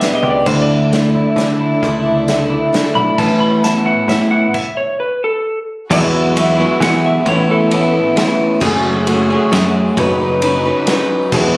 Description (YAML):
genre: folk rock and heartland rock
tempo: 133 BPM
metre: 3/4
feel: straight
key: A mixolydian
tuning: A4 = 439 Hz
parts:
  - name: electric slide guitar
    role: second line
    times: 0.0-7.9 s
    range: A4 to B5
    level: -18 LUFS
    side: equal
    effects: none
  - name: picked old ladder-braced acoustic guitar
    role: accompaniment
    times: 0.0-11.6 s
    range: E2 to B4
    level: -18 LUFS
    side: left 1 dB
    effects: none
  - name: dark studio string section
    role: sustained chords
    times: 0.0-11.6 s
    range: A3 to B4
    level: -24 LUFS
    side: equal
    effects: none
  - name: electric guitar through a small old amp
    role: riff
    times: 0.0-11.6 s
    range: E2 to B4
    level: -16 LUFS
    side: equal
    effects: none
  - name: unplugged drum kit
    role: drums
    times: 0.0-11.4 s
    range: crash cymbal, hi-hat, kick drum, ride cymbal, snare drum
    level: -21 LUFS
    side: equal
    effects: none
  - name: picked electric bass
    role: bass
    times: 0.2-11.6 s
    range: E1 to E3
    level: -17 LUFS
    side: equal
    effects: none
room: light reverb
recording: recorded on a phone in the room, club reverb, compression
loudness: -12 LUFS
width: side -23 dB against mid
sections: 0.0-5.9 A section; 5.9-11.6 B section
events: electric slide guitar solo 0.0-5.9; stop 4.5-5.9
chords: 0.5 Dsus2; 3.2 Aadd9; 5.9 Eadd9; 7.3 Aadd9; 8.6 F#madd9; 10.0 Badd9/F#